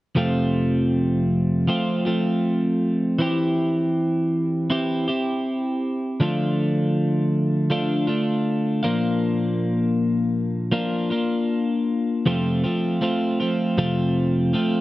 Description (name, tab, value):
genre	pop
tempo	79 BPM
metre	4/4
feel	straight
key	F major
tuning	A4 = 442 Hz
part	twelve-string electric guitar	solo	0.2-14.8 s	F2 to G4	-20 LUFS	equal	none
room	light reverb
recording	dark, warm production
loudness	-20 LUFS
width	side -17 dB against mid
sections	0.2-12.3 A section; 12.3-14.8 B section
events	none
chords	0.2 F; 3.2 C/E; 6.2 Dm; 8.8 Bb; 12.3 F